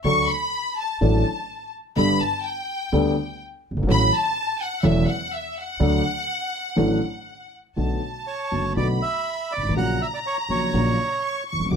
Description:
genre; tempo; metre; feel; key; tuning
tango; 124 BPM; 4/4; rubato; D major; A4 = 439 Hz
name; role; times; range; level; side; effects
dark concert grand piano; accompaniment; 0.0-11.8 s; E1 to A4; -22 LUFS; equal; none
upright bass; bass; 0.0-11.8 s; E1 to D2; -25 LUFS; right 1 dB; none
bright studio violin section; second line; 0.1-11.8 s; E5 to D6; -26 LUFS; left 2 dB; none
bandoneon; melody; 8.3-11.4 s; C#5 to F#5; -26 LUFS; right 4 dB; none
room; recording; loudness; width
light reverb; close, detailed microphones; -21 LUFS; side -6 dB against mid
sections
0.0-7.8 A section; 7.8-11.8 B section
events
violin section solo 0.0-7.8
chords
0.1 D; 2.0 Gadd9; 3.9 A6; 5.8 D; 7.8 Bm7; 9.8 F#/A#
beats
| 0.05 0.53 1.02 1.50 | 1.97 2.45 2.93 3.41 | 3.89 4.36 4.84 5.32 | 5.80 6.29 6.77 7.27 | 7.77 8.27 8.77 9.26 | 9.76 10.25 10.74 11.22 | 11.71

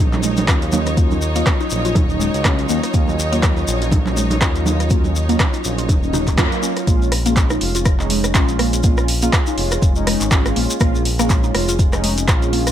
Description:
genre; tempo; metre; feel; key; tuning
afro house; 122 BPM; 4/4; swing 57% on 16ths; Bb minor; A4 = 439 Hz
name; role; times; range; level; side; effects
bright studio string section; sustained chords; 0.0-6.8 s; Eb4 to Db5; -26 LUFS; right 1 dB; sidechain pumping
mellow synth brass; stabs; 0.0-12.7 s; Gb3 to F4; -23 LUFS; right 1 dB; chorus, sidechain pumping, digital delay
smooth synth bass; bass; 0.0-12.7 s; Eb1 to Gb2; -21 LUFS; equal; sidechain pumping
deep house drum kit; drums; 0.1-12.7 s; handclaps, hi-hat, rim click; -23 LUFS; equal; overdrive
congas; percussion; 0.1-6.5 s; none; -24 LUFS; right 2 dB; none
shekere; percussion; 0.1-12.7 s; none; -28 LUFS; left 3 dB; none
mallet-like synth pluck; arpeggios; 0.2-12.7 s; Ab3 to F4; -24 LUFS; left 1 dB; chorus, phaser, sidechain pumping, digital delay
electronic kick drum; drums; 0.5-12.4 s; none; -17 LUFS; equal; none
swell; sound effects; 6.1-6.9 s; none; -29 LUFS; right 1 dB; none
room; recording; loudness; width
little or no reverb; none; -15 LUFS; side -10 dB against mid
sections
0.0-6.9 A section; 6.9-12.7 B section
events
filter sweep on analog polysynth 0.0-6.9; swell 6.1-6.9; band accent 6.4; drop 6.9-12.7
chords
0.0 Ebm7; 6.9 Bbm7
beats
0.48 | 0.97 1.46 1.96 2.45 | 2.94 3.43 3.92 4.42 | 4.91 5.40 5.89 6.38 | 6.87 7.37 7.86 8.35 | 8.84 9.33 9.82 10.32 | 10.81 11.30 11.79 12.28

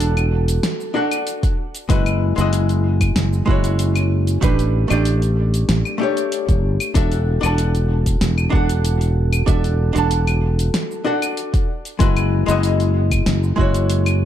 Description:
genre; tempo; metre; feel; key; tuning
sunset chillout; 95 BPM; 4/4; straight; unclear; A4 = 442 Hz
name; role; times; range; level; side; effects
archtop guitar, miked and amplified; accompaniment; 0.0-14.3 s; G#3 to A5; -22 LUFS; moving between left 6 dB and right 5 dB; auto-pan, tape echo
sustaining fretless electric bass; bass; 0.0-14.3 s; E1 to A1; -18 LUFS; equal; tube saturation
deep house drum kit; drums; 0.0-14.2 s; cabasa, claves, hi-hat, snare drum; -25 LUFS; left 1 dB; none
electronic kick drum; drums; 1.4-13.7 s; none; -19 LUFS; equal; none
room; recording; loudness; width
light reverb, digital ambience; dark, warm production; -16 LUFS; side -11 dB against mid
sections
0.0-14.3 A section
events
none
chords
0.0 E9sus4; 1.6 F#9sus4; 4.4 A9sus4; 7.0 E9sus4; 11.7 F#9sus4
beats
0.00 0.64 1.27 | 1.90 2.53 3.16 3.79 | 4.42 5.06 5.69 6.32 | 6.95 7.58 8.21 8.85 | 9.48 10.11 10.74 11.37 | 12.00 12.64 13.27 13.90

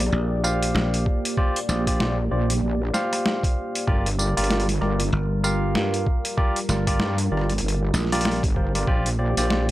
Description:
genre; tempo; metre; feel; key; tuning
glitch hop; 96 BPM; 4/4; swing 58% on 16ths; G minor pentatonic; A4 = 440 Hz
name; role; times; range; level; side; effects
dark analog pad; sustained chords; 0.0-9.7 s; G3 to D5; -30 LUFS; equal; chorus, sidechain pumping
barky tine electric piano; stabs; 0.0-9.7 s; F4 to F5; -27 LUFS; equal; overdrive, sidechain pumping, analog delay
wobble bass; bass; 0.0-9.7 s; G1 to G2; -23 LUFS; equal; chorus, overdrive
boom bap sampler-style drum kit; drums; 0.0-9.7 s; hi-hat, rim click, snare drum, tambourine; -27 LUFS; equal; overdrive
dry thumbed slap bass; bass; 0.1-8.4 s; G1 to G2; -23 LUFS; equal; none
electronic kick drum; drums; 1.1-9.0 s; none; -22 LUFS; equal; overdrive
room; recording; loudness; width
little or no reverb; dry, gritty hardware recording, transformer saturation; -20 LUFS; side -16 dB against mid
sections
0.0-9.7 A section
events
none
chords
0.0 Bb6; 3.9 Gm7; 8.9 Bb6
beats
0.13 0.75 | 1.38 2.00 2.63 3.25 | 3.88 4.50 5.13 5.75 | 6.38 7.00 7.63 8.25 | 8.88 9.50

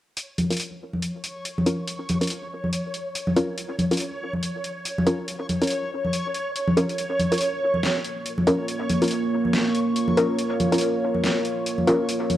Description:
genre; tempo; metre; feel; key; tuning
deep dubstep; 141 BPM; 4/4; swing 58% on 16ths, half-time; Bb minor; A4 = 440 Hz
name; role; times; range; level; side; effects
dubstep drum kit; drums; 0.2-12.4 s; hi-hat, snare drum; -29 LUFS; equal; overdrive, studio reverb, cassette tape
backwards swelling texture; texture; 1.3-12.4 s; Db5; -30 LUFS; right 1 dB; built-in reverb, cassette tape
congas; percussion; 0.4-12.4 s; none; -26 LUFS; equal; none
filtered dub chord stab; stabs; 0.5-12.1 s; Db4 to Bb4; -25 LUFS; left 1 dB; chorus, cassette tape, dub echo
deep dark ambient pad; sustained chords; 8.0-12.4 s; Bb3 to Db5; -25 LUFS; right 2 dB; chorus, built-in reverb, cassette tape
room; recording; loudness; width
light reverb; home recording on cassette; -22 LUFS; side -12 dB against mid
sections
0.2-12.4 A section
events
filter sweep on synth stab 0.2-12.4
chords
0.2 Bbm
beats
| 0.17 0.60 1.02 1.45 | 1.88 2.30 2.73 3.15 | 3.58 4.00 4.43 4.85 | 5.28 5.70 6.13 6.55 | 6.98 7.41 7.83 8.26 | 8.68 9.11 9.53 9.96 | 10.38 10.81 11.24 11.66 | 12.09

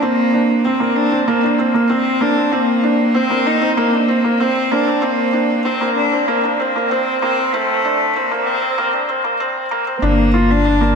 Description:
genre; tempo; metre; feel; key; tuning
piano and strings electronica; 96 BPM; 4/4; straight; unclear; A4 = 440 Hz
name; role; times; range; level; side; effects
warm cello; melody; 0.0-11.0 s; A3 to Eb4; -17 LUFS; equal; analog delay
felt-muted upright piano; riff; 0.0-11.0 s; Bb3 to F4; -17 LUFS; right 1 dB; analog delay
round analog bass; bass; 10.0-11.0 s; G1; -17 LUFS; left 1 dB; none
room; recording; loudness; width
wet plate reverb, RT60 3.1 s; dreamy mix soaked in reverb, high-pass filter; -14 LUFS; side -5 dB against mid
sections
0.0-10.0 A section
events
build-up 0.0-10.0; filter sweep on cello 0.0-10.0; filter sweep 0.0-10.0; break 8.8-10.0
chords
0.0 C7sus2; 10.0 Gm7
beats
| 0.03 0.65 1.28 1.90 | 2.53 3.15 3.78 4.40 | 5.03 5.65 6.28 6.90 | 7.53 8.15 8.78 9.40 | 10.03 10.65

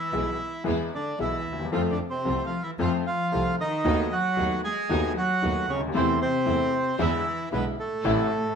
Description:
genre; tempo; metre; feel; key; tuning
tango; 114 BPM; 4/4; rubato; unclear; A4 = 440 Hz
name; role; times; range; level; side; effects
bandoneon; melody; 0.0-8.6 s; A3 to G#5; -28 LUFS; right 3 dB; none
warm cello; second line; 0.0-8.6 s; A2 to G#3; -31 LUFS; left 4 dB; none
bright upright piano; accompaniment; 0.1-8.3 s; A1 to A4; -28 LUFS; left 3 dB; none
rich symphonic string section; stabs; 0.1-8.3 s; G#3 to F4; -37 LUFS; right 3 dB; none
rich double bass; bass; 0.1-8.3 s; A1 to F2; -31 LUFS; right 2 dB; none
room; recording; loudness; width
moderate large studio reverb, RT60 0.9 s; minimal, uncompressed stereo recording; -23 LUFS; side -6 dB against mid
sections
0.0-8.6 A section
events
none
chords
0.0 E; 1.7 F; 3.9 B7/D#; 6.0 Am/E; 7.0 E7; 8.0 Am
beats
0.14 0.67 1.21 | 1.74 2.27 2.80 3.33 | 3.85 4.38 4.90 5.43 | 5.95 6.47 7.00 7.52 | 8.04

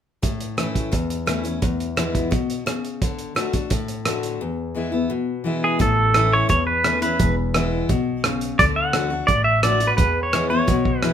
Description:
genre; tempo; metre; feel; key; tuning
honky-tonk and classic country; 172 BPM; 4/4; straight; A major; A4 = 440 Hz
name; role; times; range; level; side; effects
picked steel-string acoustic guitar; accompaniment; 0.2-11.1 s; E2 to F#4; -24 LUFS; left 4 dB; none
cloth-damped thuddy drum kit; drums; 0.2-11.1 s; hi-hat, kick drum, rim click; -23 LUFS; right 2 dB; none
pedal steel guitar; melody; 5.6-11.1 s; G#4 to F#5; -19 LUFS; right 2 dB; none
upright bass; bass; 5.8-11.1 s; E1 to E2; -25 LUFS; equal; none
room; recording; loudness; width
moderate studio reverb, RT60 0.8 s; minimal, uncompressed stereo recording; -18 LUFS; side -9 dB against mid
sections
0.2-5.8 A section; 5.8-11.1 B section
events
none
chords
0.2 A; 1.6 E; 3.0 D; 4.4 E; 5.8 A; 7.2 E; 8.6 D; 10.0 E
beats
| 0.23 0.58 0.93 1.28 | 1.62 1.97 2.32 2.67 | 3.02 3.37 3.71 4.06 | 4.41 4.76 5.11 5.46 | 5.80 6.15 6.50 6.85 | 7.20 7.54 7.89 8.24 | 8.59 8.94 9.29 9.63 | 9.98 10.33 10.68 11.03

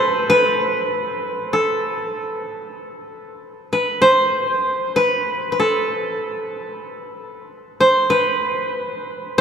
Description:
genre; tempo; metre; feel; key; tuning
japanese traditional, Japanese chamber music; free time; none; none; unclear; A4 = 440 Hz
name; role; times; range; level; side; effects
koto; solo; 0.0-9.4 s; A4 to C5; -17 LUFS; equal; none
room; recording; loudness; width
wet cathedral reverb, RT60 6.4 s; in a vast, echoing space; -17 LUFS; side -7 dB against mid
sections
0.0-9.4 A section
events
none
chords
none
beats
free time

